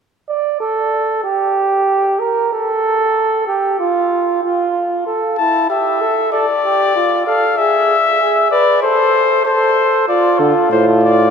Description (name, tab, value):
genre	classical, imitative canzona for brass ensemble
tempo	95 BPM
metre	4/4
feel	straight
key	D minor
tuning	A4 = 440 Hz
part	mellow flugelhorn	second line	0.3-11.3 s	E4 to D5	-15 LUFS	right 3 dB	none
part	warm trumpet	melody	5.4-11.3 s	A4 to A5	-14 LUFS	left 5 dB	none
part	clear bass trombone	bass	10.4-11.3 s	A2 to D3	-13 LUFS	equal	none
room	wet cathedral reverb, RT60 4.4 s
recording	none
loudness	-13 LUFS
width	side -6 dB against mid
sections	0.0-11.3 A section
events	none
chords	0.0 N.C.; 5.1 A5; 6.3 Dm; 7.6 E/G#; 8.8 Am; 10.1 Dm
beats	0.61 1.25 1.89 | 2.53 3.17 3.80 4.44 | 5.07 5.70 6.33 6.95 | 7.57 8.20 8.82 9.45 | 10.08 10.71